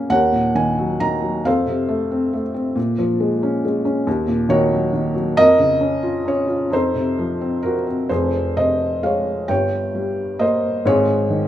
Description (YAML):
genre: classical, lyrical solo piano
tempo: 45 BPM (dotted quarters)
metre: 6/8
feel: uneven beats, rubato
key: Bb minor, F minor from 8.1 s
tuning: A4 = 440 Hz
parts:
  - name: felt-muted upright piano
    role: solo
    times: 0.0-11.5 s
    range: F1 to Bb5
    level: -17 LUFS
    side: equal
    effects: none
room: moderate recital hall reverb, RT60 1.3 s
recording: minimal, uncompressed stereo recording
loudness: -17 LUFS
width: side -12 dB against mid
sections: 0.0-8.1 A section; 8.1-11.5 B section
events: none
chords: 0.1 Ebm7; 1.5 F; 2.8 Bbm7; 4.1 Ebm7; 5.4 Bbm/F; 6.7 F7; 8.1 Fm; 9.5 Gdim; 10.9 Dbsus2/Ab